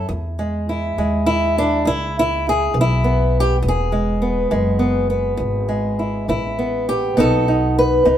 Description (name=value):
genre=acoustic country blues, solo or duo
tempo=68 BPM (dotted quarters)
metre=12/8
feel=straight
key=E major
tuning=A4 = 441 Hz
part: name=fingerpicked old ladder-braced acoustic guitar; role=melody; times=0.0-8.2 s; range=E2 to B4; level=-17 LUFS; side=equal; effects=none
part: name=upright bass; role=bass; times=0.0-8.2 s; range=E1 to E2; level=-22 LUFS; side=equal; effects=none
room=moderate large studio reverb, RT60 1.0 s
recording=band playing live in one room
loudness=-16 LUFS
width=side -10 dB against mid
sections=0.0-8.2 A section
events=none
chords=0.1 E; 7.2 B